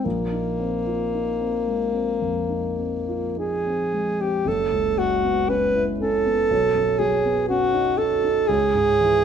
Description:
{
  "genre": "classical, impressionist duo for alto saxophone and grand piano",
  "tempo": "50-61 BPM",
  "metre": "4/4",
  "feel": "rubato",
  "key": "F# dorian from 4.5 s",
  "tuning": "A4 = 440 Hz",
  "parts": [
    { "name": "warm alto saxophone", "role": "melody", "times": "0.0-9.2 s", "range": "Bb3 to B4", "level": "-21 LUFS", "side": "right 1 dB", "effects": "none" },
    { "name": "dark concert grand piano", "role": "accompaniment", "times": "0.0-9.2 s", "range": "F#1 to F#4", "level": "-26 LUFS", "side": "equal", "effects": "none" }
  ],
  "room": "moderate large studio reverb, RT60 1.2 s",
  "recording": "minimal, uncompressed stereo recording",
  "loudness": "-20 LUFS",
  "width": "side -8 dB against mid",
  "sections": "0.0-4.5 A section; 4.5-9.2 B section",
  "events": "none",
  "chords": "0.0 Bb9sus4; 4.5 F#9sus4; 6.5 Badd9; 8.5 C#m"
}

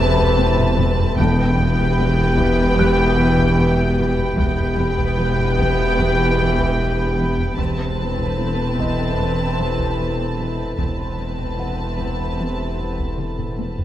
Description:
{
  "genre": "cinematic, suspense film score",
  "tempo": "75 BPM",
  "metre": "4/4",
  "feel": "straight",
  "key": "E minor",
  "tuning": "A4 = 440 Hz",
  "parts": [
    { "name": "muted studio violin section", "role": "melody", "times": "0.0-13.7 s", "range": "G5 to A5", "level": "-26 LUFS", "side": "equal", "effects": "none" },
    { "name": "muted studio violin section", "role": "second line", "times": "0.0-13.7 s", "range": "B4", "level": "-29 LUFS", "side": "equal", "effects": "none" },
    { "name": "muted studio viola section", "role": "accompaniment", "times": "0.0-13.7 s", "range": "B3 to C4", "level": "-30 LUFS", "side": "equal", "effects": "none" },
    { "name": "clear trombone section", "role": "sustained chords", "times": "0.0-13.6 s", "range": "B2 to E3", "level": "-28 LUFS", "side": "left 1 dB", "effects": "none" },
    { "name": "glass harmonica", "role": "sustained chords", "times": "0.0-13.8 s", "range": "E4 to B5", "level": "-30 LUFS", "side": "left 1 dB", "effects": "none" },
    { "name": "mellow French horn section", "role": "sustained chords", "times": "0.0-13.6 s", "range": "B3 to B4", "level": "-27 LUFS", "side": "equal", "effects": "none" },
    { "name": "muted studio cello section", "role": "riff", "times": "0.0-13.8 s", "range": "E2 to E3", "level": "-28 LUFS", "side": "equal", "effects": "none" },
    { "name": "muted studio cello section", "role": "bass", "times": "0.0-13.7 s", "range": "E2", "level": "-25 LUFS", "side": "right 1 dB", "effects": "none" },
    { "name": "muted studio double bass section", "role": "bass", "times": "0.0-13.7 s", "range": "E1", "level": "-24 LUFS", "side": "equal", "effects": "none" },
    { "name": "sub bass with octave", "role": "drone", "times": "0.0-13.8 s", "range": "E1", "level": "-27 LUFS", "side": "equal", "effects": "none" },
    { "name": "felt-muted upright piano", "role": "texture", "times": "0.0-13.8 s", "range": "G4 to F#6", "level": "-33 LUFS", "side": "equal", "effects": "none" },
    { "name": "taiko ensemble", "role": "drums", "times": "0.2-13.8 s", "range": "none", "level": "-28 LUFS", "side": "equal", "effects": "none" },
    { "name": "timpani", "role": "percussion", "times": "1.2-2.3 s", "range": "E2", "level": "-26 LUFS", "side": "left 2 dB", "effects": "none" }
  ],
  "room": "moderate stone room reverb, RT60 1.4 s",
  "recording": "none",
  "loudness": "-17 LUFS",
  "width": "side -12 dB against mid",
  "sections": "0.0-13.8 A section",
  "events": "drum fill 0.4-1.2, 13.2-13.8",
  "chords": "0.0 Amadd9/E; 1.2 Em; 7.6 Amadd9/E"
}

